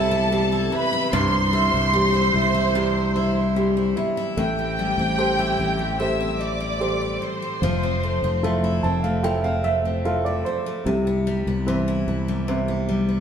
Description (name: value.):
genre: pop.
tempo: 74 BPM.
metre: 4/4.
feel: straight.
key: C major.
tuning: A4 = 440 Hz.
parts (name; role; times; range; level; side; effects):
warm studio violin section; melody; 0.0-8.8 s; G4 to E6; -24 LUFS; right 1 dB; none.
warm baby grand piano; accompaniment; 0.0-13.2 s; G2 to A5; -25 LUFS; right 1 dB; none.
picked steel-string acoustic guitar; arpeggios; 0.0-13.2 s; A2 to E4; -27 LUFS; left 3 dB; none.
sustaining fretless electric bass; bass; 0.0-13.2 s; F1 to C2; -24 LUFS; equal; none.
room: wet stone room reverb, RT60 1.4 s.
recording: band playing live in one room.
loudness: -20 LUFS.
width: side -8 dB against mid.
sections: 0.0-4.4 A section; 4.4-13.2 B section.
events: grand piano fill 8.4-10.9.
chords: 0.0 Cmaj7; 4.4 Am7; 7.6 Fmaj7; 10.9 Cmaj7.